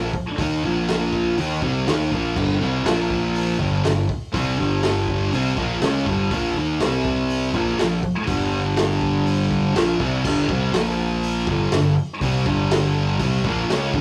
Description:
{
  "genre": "garage rock duo or trio",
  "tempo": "122 BPM",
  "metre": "4/4",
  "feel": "straight",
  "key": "G minor",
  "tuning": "A4 = 436 Hz",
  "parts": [
    { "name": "thick fuzz guitar", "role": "riff", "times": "0.0-14.0 s", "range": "G2 to Eb4", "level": "-23 LUFS", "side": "equal", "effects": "distortion" },
    { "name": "fuzz fingered electric bass", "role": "bass", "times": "0.0-14.0 s", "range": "G1 to Eb2", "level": "-29 LUFS", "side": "equal", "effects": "overdrive, tube saturation" },
    { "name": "crunchy breakbeat drum kit", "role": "drums", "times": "0.1-14.0 s", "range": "crash cymbal, hi-hat, kick drum, snare drum", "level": "-29 LUFS", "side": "equal", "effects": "none" }
  ],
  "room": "wet booth ambience, RT60 0.2 s",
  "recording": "rough rehearsal-room recording",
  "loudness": "-21 LUFS",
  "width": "mono",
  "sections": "0.0-10.3 A section; 10.3-14.0 B section",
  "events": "none",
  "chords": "0.0 Bb5; 2.4 G5; 2.9 Bb5; 3.6 Gm; 6.3 Bb5; 6.8 C5; 7.5 Bb5; 8.3 G5; 9.8 Bb5; 10.3 G5; 10.7 Bb5; 11.5 Gm",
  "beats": "| 0.39 0.89 1.38 1.87 | 2.36 2.86 3.35 3.84 | 4.33 4.83 5.32 5.82 | 6.31 6.80 7.29 7.79 | 8.28 8.77 9.27 9.76 | 10.25 10.74 11.24 11.73 | 12.22 12.71 13.20 13.70"
}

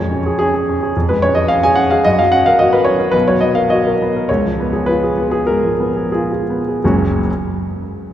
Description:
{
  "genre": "classical, romantic character piece for solo piano",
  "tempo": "78-112 BPM",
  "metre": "4/4",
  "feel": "rubato",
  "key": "F# major",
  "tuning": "A4 = 440 Hz",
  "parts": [
    { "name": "warm concert grand piano", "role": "solo", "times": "0.0-7.3 s", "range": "F#1 to G#5", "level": "-13 LUFS", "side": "equal", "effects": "none" }
  ],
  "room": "wet church reverb, RT60 3.8 s",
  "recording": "recorded in a church or concert hall",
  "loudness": "-13 LUFS",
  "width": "side -11 dB against mid",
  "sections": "0.0-6.8 A section; 6.8-8.1 B section",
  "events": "slowing down 0.9-6.8",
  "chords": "0.0 C#/E#; 2.0 F#; 3.1 Bmaj7; 4.3 C#7; 6.8 F#",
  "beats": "0.39 0.95 1.49 | 2.05 2.60 3.14 3.71 | 4.28 4.87 5.46 6.10 | 6.82"
}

